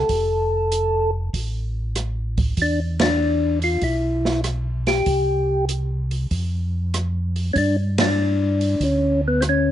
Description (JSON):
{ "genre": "soul jazz organ trio", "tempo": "96 BPM", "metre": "4/4", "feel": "swing 68% on 8ths", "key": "G major", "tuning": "A4 = 440 Hz", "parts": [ { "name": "percussive tonewheel organ", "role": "melody", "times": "0.0-9.7 s", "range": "B3 to A4", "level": "-20 LUFS", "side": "left 1 dB", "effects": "slow rotary speaker, overdrive, plate reverb" }, { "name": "mellow tonewheel organ", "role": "bass", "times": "0.0-9.7 s", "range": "F1 to G2", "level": "-23 LUFS", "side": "equal", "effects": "chorus vibrato, slow rotary speaker" }, { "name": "open jazz drum kit", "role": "drums", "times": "0.1-9.6 s", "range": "hi-hat, kick drum, ride cymbal, rim click, snare drum", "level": "-25 LUFS", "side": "right 2 dB", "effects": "none" } ], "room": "light reverb", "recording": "nothing above 10.9 kHz", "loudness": "-19 LUFS", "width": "side -11 dB against mid", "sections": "0.0-9.7 A section", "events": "band accent 2.9-3.2, 7.9-8.2", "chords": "0.1 F; 2.6 E5; 5.1 C5; 6.3 N.C.; 7.6 G5" }